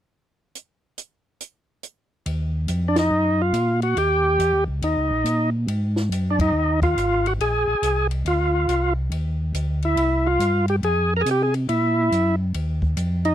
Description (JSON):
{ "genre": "soul jazz organ trio", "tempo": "140 BPM", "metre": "4/4", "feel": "swing 65% on 8ths", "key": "Eb dorian", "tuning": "A4 = 441 Hz", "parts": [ { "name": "compact cocktail drum kit", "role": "drums", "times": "0.6-13.3 s", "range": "hi-hat, kick drum, ride cymbal, snare drum", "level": "-31 LUFS", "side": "equal", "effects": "none" }, { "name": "mellow tonewheel organ", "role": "bass", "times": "2.3-13.3 s", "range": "Ab1 to C3", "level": "-23 LUFS", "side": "equal", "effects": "chorus vibrato, slow rotary speaker" }, { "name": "percussive tonewheel organ", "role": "melody", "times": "2.9-13.3 s", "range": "D4 to Bb4", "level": "-20 LUFS", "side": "equal", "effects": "slow rotary speaker, overdrive" } ], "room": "little or no reverb", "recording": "dry, close 1970s-style studio recording", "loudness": "-19 LUFS", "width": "side -11 dB against mid", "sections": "0.6-2.3 A section; 2.3-13.3 B section", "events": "band accent 2.9, 6.3", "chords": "0.6 N.C.; 2.3 Ebmadd9; 4.0 Eb7b9; 5.7 Ab5; 7.4 Bb9; 9.1 Dsus2; 10.0 C5; 10.8 F5; 11.7 Gb7; 12.5 Ebsus2" }